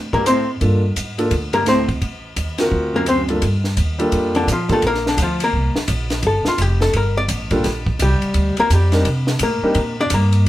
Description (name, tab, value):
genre	jazz, small-group swing and bop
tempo	170 BPM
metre	4/4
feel	swing 63% on 8ths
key	G minor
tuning	A4 = 440 Hz
part	upright bass	bass	0.0-10.5 s	F1 to C3	-19 LUFS	equal	none
part	archtop guitar, miked and amplified	melody	0.1-10.5 s	D3 to D5	-18 LUFS	left 2 dB	none
part	breathy baritone saxophone	second line	0.1-3.3 s	F#2 to A2	-24 LUFS	right 4 dB	none
part	compact cocktail drum kit	drums	0.1-10.5 s	hi-hat, kick drum, ride cymbal, snare drum	-24 LUFS	equal	none
part	warm concert grand piano	accompaniment	0.6-4.8, 7.5-9.8 s	G2 to Bb4	-20 LUFS	equal	none
room	moderate studio reverb, RT60 0.6 s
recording	heard from further back in the room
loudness	-16 LUFS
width	side -15 dB against mid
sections	0.0-3.4 A section; 3.4-10.5 B section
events	hollow-body jazz guitar solo 3.4-10.5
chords	0.0 D7(no3) (rootless); 0.6 Gm9; 2.0 Adim; 2.7 D7alt; 3.4 Gm9